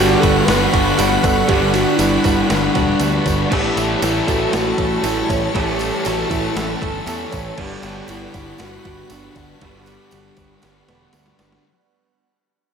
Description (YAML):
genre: rock, shoegaze and dream pop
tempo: 118 BPM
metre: 4/4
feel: straight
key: G lydian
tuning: A4 = 440 Hz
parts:
  - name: reedy FM lead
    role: melody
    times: 0.0-11.1 s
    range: D4 to B4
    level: -23 LUFS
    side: right 1 dB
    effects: chorus, tape echo
  - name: soft additive organ-like pad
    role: sustained chords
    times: 0.1-11.6 s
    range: A4 to C#6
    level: -27 LUFS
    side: right 1 dB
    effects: ensemble chorus, built-in reverb
  - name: picked twelve-string acoustic guitar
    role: arpeggios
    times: 0.0-11.6 s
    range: E3 to G4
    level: -28 LUFS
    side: right 4 dB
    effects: analog chorus, tape echo
  - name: cranked stack guitar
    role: riff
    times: 0.0-11.6 s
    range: G2 to A3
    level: -25 LUFS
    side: equal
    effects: overdrive
  - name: direct-recorded clean electric guitar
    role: riff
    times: 0.0-11.6 s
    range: A2 to A4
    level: -23 LUFS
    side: right 7 dB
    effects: reverse reverb
  - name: thick fuzz guitar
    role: riff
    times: 0.0-11.6 s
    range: G2 to A3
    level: -22 LUFS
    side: left 9 dB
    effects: distortion, analog chorus
  - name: overdriven picked electric bass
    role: bass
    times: 0.0-11.6 s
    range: E1 to E2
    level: -24 LUFS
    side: equal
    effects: none
  - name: gated 80s digital drum machine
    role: drums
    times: 0.2-11.6 s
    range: crash cymbal, kick drum, ride cymbal, snare drum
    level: -24 LUFS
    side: equal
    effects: gated reverb, gated reverb snare
  - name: tambourine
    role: percussion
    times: 0.2-11.5 s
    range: none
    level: -34 LUFS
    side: right 7 dB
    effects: none
room: wet plate reverb, RT60 2.6 s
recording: dreamy mix soaked in reverb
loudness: -15 LUFS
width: side -6 dB against mid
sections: 0.0-11.6 A section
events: fade-out 0.0-11.6; drum fill 10.6-11.6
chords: 0.0 Gmaj7; 3.5 A7; 7.6 Gmaj7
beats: 0.49 0.99 | 1.50 2.00 2.51 3.02 | 3.52 4.03 4.54 5.04 | 5.55 6.06 6.57 7.08 | 7.58 8.09 8.60 9.11 | 9.62 10.12 10.63 11.14